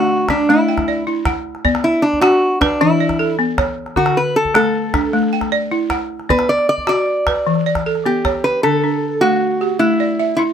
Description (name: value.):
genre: west african traditional, West African string and xylophone music.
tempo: 103 BPM (dotted quarters).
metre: 12/8.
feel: straight.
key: D major.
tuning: A4 = 440 Hz.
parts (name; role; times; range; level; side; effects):
lap resonator guitar; melody; 0.0-10.4 s; D4 to D5; -16 LUFS; right 1 dB; none.
balafon; arpeggios; 0.0-10.5 s; D3 to G5; -18 LUFS; left 1 dB; none.
calabash; percussion; 0.0-8.5 s; none; -23 LUFS; equal; none.
room: little or no reverb.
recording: close, detailed microphones.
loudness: -14 LUFS.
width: side -8 dB against mid.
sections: 0.0-8.6 A section; 8.6-10.5 B section.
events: resonator guitar played with a steel bar solo 0.0-8.6.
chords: 0.5 A5; 1.6 Bm; 2.8 E5; 4.0 D; 5.1 A5; 6.3 Bm; 7.5 Em; 8.6 D; 9.8 A5.